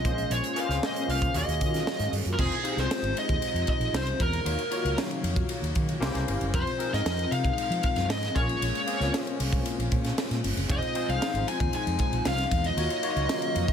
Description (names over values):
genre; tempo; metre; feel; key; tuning
polished 1980s jazz-funk pop; 116 BPM; 4/4; straight; unclear; A4 = 440 Hz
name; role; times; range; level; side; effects
high-gain lead guitar; melody; 0.0-13.7 s; Ab4 to Ab5; -30 LUFS; equal; distortion
barky tine electric piano; accompaniment; 0.0-13.7 s; Bb3 to Db5; -33 LUFS; left 4 dB; overdrive, ensemble chorus
hollow soft pad; sustained chords; 0.1-13.7 s; C3 to F5; -39 LUFS; left 1 dB; chorus
mellow fretless electric bass; bass; 0.0-13.7 s; F1 to F3; -30 LUFS; equal; none
crisp fusion drum kit; drums; 0.0-13.7 s; crash cymbal, hi-hat, kick drum, ride cymbal, snare drum; -30 LUFS; right 1 dB; none
room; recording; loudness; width
light reverb, small room ambience; none; -25 LUFS; side -8 dB against mid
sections
0.0-2.4 A section; 2.4-13.7 A section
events
none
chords
0.0 Bbm9; 1.3 Ebm11; 2.4 Fm7; 4.5 Ebm9; 6.0 C7b9; 6.5 Fm7; 8.4 Bbm9; 10.7 Fm7; 12.8 Ebm9